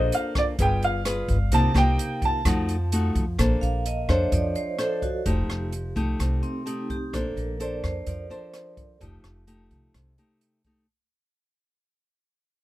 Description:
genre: bossa nova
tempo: 128 BPM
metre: 4/4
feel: straight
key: Bb major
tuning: A4 = 440 Hz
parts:
  - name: warm baby grand piano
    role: melody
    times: 0.0-3.1 s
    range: D5 to A5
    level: -26 LUFS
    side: right 2 dB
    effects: none
  - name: nylon-string guitar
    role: accompaniment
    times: 0.0-10.9 s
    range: C3 to C5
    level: -28 LUFS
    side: left 1 dB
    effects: none
  - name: upright bass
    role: bass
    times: 0.0-10.2 s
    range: F1 to F2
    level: -25 LUFS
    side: equal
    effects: none
  - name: open jazz drum kit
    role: drums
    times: 0.1-10.8 s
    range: hi-hat, kick drum, rim click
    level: -29 LUFS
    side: equal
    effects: none
  - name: vibraphone with medium hard mallets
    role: accompaniment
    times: 3.6-9.0 s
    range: C4 to F5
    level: -32 LUFS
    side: right 3 dB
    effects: none
room: little or no reverb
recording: close, detailed microphones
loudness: -22 LUFS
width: side -16 dB against mid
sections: 0.0-3.4 A section; 3.4-10.9 B section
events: fade-out 3.4-10.9; vibraphone solo 3.4-10.9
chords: 0.0 Bbmaj9; 0.6 G7b9; 1.5 Cm7; 2.4 F7b9; 3.4 Bbmaj9; 5.3 F9; 7.1 Bbmaj9; 9.0 F9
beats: 0.11 0.58 1.04 | 1.51 1.98 2.45 2.91 | 3.38 3.85 4.32 4.79 | 5.25 5.72 6.19 6.66 | 7.13 7.59 8.06 8.53 | 9.00 9.47 9.94 10.41

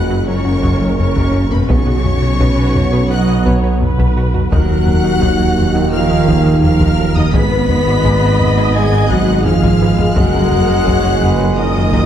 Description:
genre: cinematic, hybrid orchestral and electronic film score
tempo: 85 BPM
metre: 4/4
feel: straight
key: unclear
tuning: A4 = 440 Hz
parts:
  - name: warm symphonic violin section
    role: melody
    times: 0.0-12.1 s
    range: Cb6 to Cb7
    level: -26 LUFS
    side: left 4 dB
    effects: none
  - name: rich chamber violin section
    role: second line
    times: 0.0-12.1 s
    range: Cb5 to Cb6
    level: -24 LUFS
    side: left 1 dB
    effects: none
  - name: warm symphonic viola section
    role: accompaniment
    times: 0.0-12.1 s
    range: F#4 to Eb5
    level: -24 LUFS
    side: right 2 dB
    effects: none
  - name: clear trombone section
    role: sustained chords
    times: 0.0-12.1 s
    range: Bb2 to Cb4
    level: -22 LUFS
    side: right 2 dB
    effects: none
  - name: dark French horn section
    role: sustained chords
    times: 0.0-12.1 s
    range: Cb4 to Cb5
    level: -21 LUFS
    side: left 5 dB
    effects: none
  - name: round analog bass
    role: riff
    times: 0.0-12.0 s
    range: Eb2 to B3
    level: -20 LUFS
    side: left 2 dB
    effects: none
  - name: dark tuba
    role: bass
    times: 0.0-12.1 s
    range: Gb1 to Eb2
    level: -20 LUFS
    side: right 3 dB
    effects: none
  - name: detuned saw bass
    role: bass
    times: 0.0-12.1 s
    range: Eb1 to B1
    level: -23 LUFS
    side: left 1 dB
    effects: none
  - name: rich studio cello section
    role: bass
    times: 0.0-12.1 s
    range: Cb3 to Cb4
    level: -20 LUFS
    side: right 3 dB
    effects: none
  - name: rich symphonic double bass section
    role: bass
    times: 0.0-12.1 s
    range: Gb1 to Eb2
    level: -20 LUFS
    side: right 2 dB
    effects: none
  - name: tight sequenced synth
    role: arpeggios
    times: 0.1-12.0 s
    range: Eb3 to C#5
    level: -26 LUFS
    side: right 1 dB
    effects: none
  - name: solo taiko drums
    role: drums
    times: 0.6-12.1 s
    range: none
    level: -19 LUFS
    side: left 1 dB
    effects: none
room: wet scoring stage reverb, RT60 1.7 s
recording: dark, warm production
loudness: -11 LUFS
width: side -10 dB against mid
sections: 0.0-12.1 A section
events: none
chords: 0.0 Gb; 1.7 Bsus2; 4.5 Ebmadd9; 7.3 Abm7; 10.2 Gb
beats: 0.28 0.99 | 1.69 2.40 3.10 3.81 | 4.52 5.22 5.93 6.63 | 7.34 8.05 8.75 9.46 | 10.16 10.87 11.58

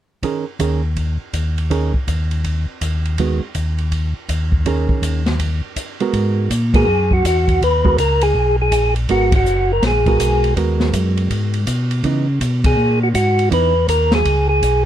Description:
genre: soul jazz organ trio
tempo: 162 BPM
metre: 4/4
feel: swing 64% on 8ths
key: G# minor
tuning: A4 = 440 Hz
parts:
  - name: hollow-body jazz guitar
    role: accompaniment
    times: 0.2-13.7 s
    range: D#3 to A#4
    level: -20 LUFS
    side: right 6 dB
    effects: none
  - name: open jazz drum kit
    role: drums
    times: 0.2-14.7 s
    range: hi-hat, kick drum, ride cymbal, snare drum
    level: -22 LUFS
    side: equal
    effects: none
  - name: mellow tonewheel organ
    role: bass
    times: 0.6-14.9 s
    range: F#1 to C#3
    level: -18 LUFS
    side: equal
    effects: overdrive, chorus vibrato, slow rotary speaker
  - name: percussive tonewheel organ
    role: melody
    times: 6.8-14.8 s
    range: F#4 to B4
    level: -16 LUFS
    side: equal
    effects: slow rotary speaker
room: little or no reverb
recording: close, detailed microphones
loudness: -15 LUFS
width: side -11 dB against mid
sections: 0.2-6.1 A section; 6.1-14.9 B section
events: break 5.4-6.1; band accent 6.7, 9.3, 12.6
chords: 0.2 D#7sus4; 3.2 G#m7/D#; 4.7 D#7sus4; 6.1 G#m9; 12.0 C#m9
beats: | 0.23 0.59 0.96 1.33 | 1.70 2.07 2.44 2.81 | 3.18 3.55 3.92 4.29 | 4.66 5.03 5.39 5.76 | 6.13 6.50 6.87 7.24 | 7.61 7.98 8.35 8.72 | 9.09 9.45 9.82 10.19 | 10.56 10.93 11.30 11.67 | 12.04 12.41 12.78 13.14 | 13.51 13.88 14.25 14.62

